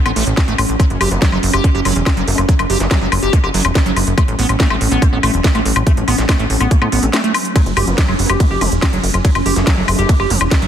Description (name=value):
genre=psychedelic trance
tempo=142 BPM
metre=4/4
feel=straight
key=F# phrygian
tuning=A4 = 440 Hz
part: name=pulsing gated texture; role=sustained chords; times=0.0-10.7 s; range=F#3 to C#4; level=-22 LUFS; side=equal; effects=chorus, built-in reverb, vintage 12-bit sampler grit, sidechain pumping
part: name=liquid acid bass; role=riff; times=0.1-10.7 s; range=E3 to G4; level=-21 LUFS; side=right 1 dB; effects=chorus, auto-pan, sidechain pumping, ping-pong delay
part: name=plucky analog bass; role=bass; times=0.1-10.7 s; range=E1 to A2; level=-18 LUFS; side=equal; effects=none
part: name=garage drum kit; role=drums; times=0.1-10.7 s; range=hi-hat, ride cymbal, snare drum, woodblock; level=-19 LUFS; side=left 1 dB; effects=none
part: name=electronic kick drum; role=drums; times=0.4-10.6 s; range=none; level=-15 LUFS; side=equal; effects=none
part: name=vowel-sweep wobble bass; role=second line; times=1.1-3.0, 7.9-10.2 s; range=A3 to B3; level=-31 LUFS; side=right 3 dB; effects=none
room=light reverb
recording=dense, heavily limited modern master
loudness=-12 LUFS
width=side -9 dB against mid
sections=0.0-10.7 A section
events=break 7.1-7.6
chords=0.0 A5; 0.8 F#5; 4.2 A5; 7.6 F#5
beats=0.37 | 0.80 1.22 1.64 2.06 | 2.49 2.91 3.33 3.75 | 4.18 4.60 5.02 5.44 | 5.87 6.29 6.71 7.13 | 7.56 7.98 8.40 8.82 | 9.25 9.67 10.09 10.51